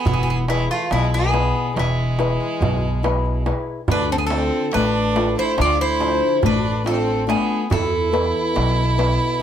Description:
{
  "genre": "greek folk, Greek bouzouki band",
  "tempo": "141 BPM (eighths)",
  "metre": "9/8",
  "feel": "straight",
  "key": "unclear",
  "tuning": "A4 = 440 Hz",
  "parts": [
    { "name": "Greek bouzouki", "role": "melody", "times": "0.0-9.4 s", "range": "E4 to D5", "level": "-23 LUFS", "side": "equal", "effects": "plate reverb" },
    { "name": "clear violin", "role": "second line", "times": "0.0-9.4 s", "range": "G#3 to F4", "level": "-25 LUFS", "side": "right 4 dB", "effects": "none" },
    { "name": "nylon-string guitar", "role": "accompaniment", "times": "0.1-9.4 s", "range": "B2 to B4", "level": "-24 LUFS", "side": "left 5 dB", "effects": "none" },
    { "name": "upright bass", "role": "bass", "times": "0.1-9.2 s", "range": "E1 to E2", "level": "-22 LUFS", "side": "equal", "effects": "none" },
    { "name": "darbuka", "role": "percussion", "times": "0.1-9.3 s", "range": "none", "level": "-26 LUFS", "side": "right 2 dB", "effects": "none" }
  ],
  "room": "moderate small room ambience, RT60 0.5 s",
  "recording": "none",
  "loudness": "-17 LUFS",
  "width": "side -9 dB against mid",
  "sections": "0.0-9.4 A section",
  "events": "none",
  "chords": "0.1 E; 3.9 Dm; 7.7 E5"
}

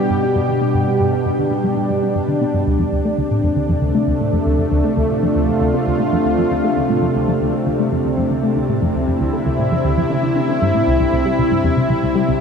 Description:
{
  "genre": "ambient, sequencer-driven space music",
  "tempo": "117 BPM",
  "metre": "4/4",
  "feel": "straight",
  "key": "D dorian",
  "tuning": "A4 = 442 Hz",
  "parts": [
    { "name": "lush unison pad", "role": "sustained chords", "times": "0.0-12.4 s", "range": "B2 to G4", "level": "-17 LUFS", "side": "equal", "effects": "chorus, shimmer reverb" },
    { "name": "tight sequenced synth", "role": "riff", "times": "0.1-12.3 s", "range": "C2 to D4", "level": "-20 LUFS", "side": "equal", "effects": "chorus, phaser, ping-pong delay" }
  ],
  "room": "wet lush hall reverb, RT60 2.7 s",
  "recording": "dreamy mix soaked in reverb, cassette tape",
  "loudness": "-15 LUFS",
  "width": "side -6 dB against mid",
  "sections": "0.0-12.4 A section",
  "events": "none",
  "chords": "0.0 G; 2.7 Dm7; 10.9 C"
}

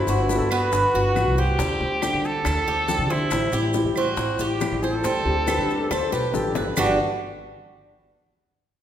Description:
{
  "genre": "latin, Cuban son and guajira",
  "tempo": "139 BPM",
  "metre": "4/4",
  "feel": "straight",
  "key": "G major",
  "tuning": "A4 = 441 Hz",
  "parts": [
    { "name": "clear trumpet", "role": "melody", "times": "0.0-7.0 s", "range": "E4 to A4", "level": "-27 LUFS", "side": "right 1 dB", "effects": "none" },
    { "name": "breathy mellow concert flute", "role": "second line", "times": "0.0-1.4, 5.3-7.0 s", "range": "G4 to C5", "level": "-27 LUFS", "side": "left 2 dB", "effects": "none" },
    { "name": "flamenco guitar", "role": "accompaniment", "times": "0.0-7.0 s", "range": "D3 to G4", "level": "-28 LUFS", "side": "left 2 dB", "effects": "none" },
    { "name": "Cuban tres", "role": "arpeggios", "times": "0.0-7.0 s", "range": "G3 to C5", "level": "-26 LUFS", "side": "right 3 dB", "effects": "none" },
    { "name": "upright bass", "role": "bass", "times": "0.0-7.0 s", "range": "G1 to D3", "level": "-26 LUFS", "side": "equal", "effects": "none" },
    { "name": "bongos", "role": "percussion", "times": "0.1-6.9 s", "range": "none", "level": "-32 LUFS", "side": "left 4 dB", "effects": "none" },
    { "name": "maracas", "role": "percussion", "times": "0.1-6.9 s", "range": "none", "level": "-39 LUFS", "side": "left 6 dB", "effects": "none" },
    { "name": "claves", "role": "percussion", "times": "0.5-6.9 s", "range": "none", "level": "-37 LUFS", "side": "right 3 dB", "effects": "none" }
  ],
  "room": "wet recital hall reverb, RT60 1.5 s",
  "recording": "recorded in a church or concert hall",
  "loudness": "-20 LUFS",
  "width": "side -10 dB against mid",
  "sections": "0.0-6.8 A section; 6.8-8.5 B section",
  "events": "drum fill 5.9-6.8",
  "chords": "0.0 Gmaj7; 1.6 D7sus4; 3.3 Am7; 5.0 D7sus4; 6.8 Gmaj7(no3)"
}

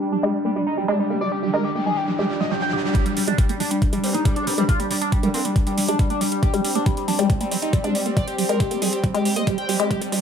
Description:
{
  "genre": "psychedelic trance",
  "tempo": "138 BPM",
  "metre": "4/4",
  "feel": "straight",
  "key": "G phrygian",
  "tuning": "A4 = 440 Hz",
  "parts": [
    { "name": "overdriven synth lead", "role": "melody", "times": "0.0-10.2 s", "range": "G3 to G5", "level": "-25 LUFS", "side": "left 1 dB", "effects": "distortion, phaser, sidechain pumping, digital delay" },
    { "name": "bubbling stepped-filter texture", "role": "sustained chords", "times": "0.0-10.2 s", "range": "G3 to D4", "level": "-27 LUFS", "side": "equal", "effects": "chorus, built-in reverb, vintage 12-bit sampler grit, sidechain pumping" },
    { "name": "riser", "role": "sound effects", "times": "0.7-2.9, 10.2 s", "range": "none", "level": "-31 LUFS", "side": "equal", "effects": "none" },
    { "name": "woody wave-folded pluck", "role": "riff", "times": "0.1-10.2 s", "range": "F3 to Bb3", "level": "-24 LUFS", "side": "moving between left 2 dB and right 6 dB", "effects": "chorus, auto-pan, sidechain pumping, digital delay" },
    { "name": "electronic hi-hat", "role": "drums", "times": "2.9-10.2 s", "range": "none", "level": "-29 LUFS", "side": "right 2 dB", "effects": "overdrive, high-pass filter on hats, small room ambience" },
    { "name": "electronic kick drum", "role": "drums", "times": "2.9-10.0 s", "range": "none", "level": "-20 LUFS", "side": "equal", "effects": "overdrive, small room ambience" },
    { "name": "formant-sweep wobble bass", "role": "second line", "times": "4.0-5.4 s", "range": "G3 to C4", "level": "-34 LUFS", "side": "right 2 dB", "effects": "analog chorus, sidechain pumping, high-pass filter, digital delay" }
  ],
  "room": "moderate digital room reverb, RT60 1.2 s",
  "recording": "high-pass filter, low-pass filter",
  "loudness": "-19 LUFS",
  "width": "side -7 dB against mid",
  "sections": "0.0-2.9 A section; 2.9-10.2 B section",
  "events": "filter sweep on synth arpeggio sound 0.0-2.9, 2.9-10.2; filter sweep on synth texture 0.0-2.9; filter sweep 0.0-2.9; riser 0.7-2.9; build-up 2.9-10.2; drum fill 9.9-10.2",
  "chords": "0.0 G5"
}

